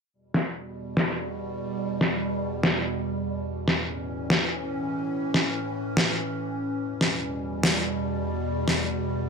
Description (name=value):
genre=heavy wobble dubstep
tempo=144 BPM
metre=4/4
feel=half-time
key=E dorian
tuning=A4 = 440 Hz
part: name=evolving wavetable pad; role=sustained chords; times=0.5-9.3 s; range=E2 to C#4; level=-29 LUFS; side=right 1 dB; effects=chorus, built-in reverb
part: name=electronic snare drum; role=drums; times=0.3-8.8 s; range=none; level=-23 LUFS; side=equal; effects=overdrive, low-pass filter on snare, low-pass filter on room
room=moderate digital room reverb, RT60 1.1 s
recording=none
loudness=-25 LUFS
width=side -5 dB against mid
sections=0.1-9.3 A section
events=filter sweep on drum 0.1-9.3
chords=0.1 Em; 3.5 A; 6.8 Em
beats=| 0.14 0.55 0.97 1.39 | 1.80 2.22 2.63 3.05 | 3.47 3.88 4.30 4.72 | 5.13 5.55 5.97 6.38 | 6.80 7.22 7.63 8.05 | 8.47 8.88